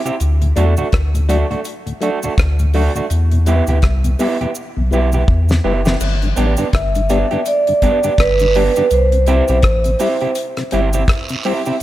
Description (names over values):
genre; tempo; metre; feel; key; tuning
roots reggae; 83 BPM; 4/4; swing 59% on 16ths; G major; A4 = 439 Hz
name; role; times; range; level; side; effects
electric guitar through a small old amp; accompaniment; 0.1-11.8 s; A3 to G4; -21 LUFS; right 4 dB; dub echo
mellow tonewheel organ; accompaniment; 0.1-11.7 s; D2 to E4; -23 LUFS; left 4 dB; slow rotary speaker
damped 70s drum kit; drums; 0.1-11.8 s; crash cymbal, hi-hat, kick drum, rim click, snare drum; -19 LUFS; left 1 dB; none
cabasa and guiro; percussion; 0.1-11.8 s; none; -31 LUFS; right 5 dB; none
warm sub bass; bass; 0.2-11.0 s; F#1 to E2; -15 LUFS; equal; none
vibraphone with medium mallets; melody; 6.7-10.3 s; B4 to E5; -16 LUFS; right 2 dB; dub echo
room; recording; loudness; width
light reverb, small room ambience; none; -13 LUFS; side -14 dB against mid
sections
0.0-6.0 A section; 6.0-11.8 B section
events
drum fill 4.6-6.0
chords
0.2 D; 3.1 Em; 6.0 G; 8.9 C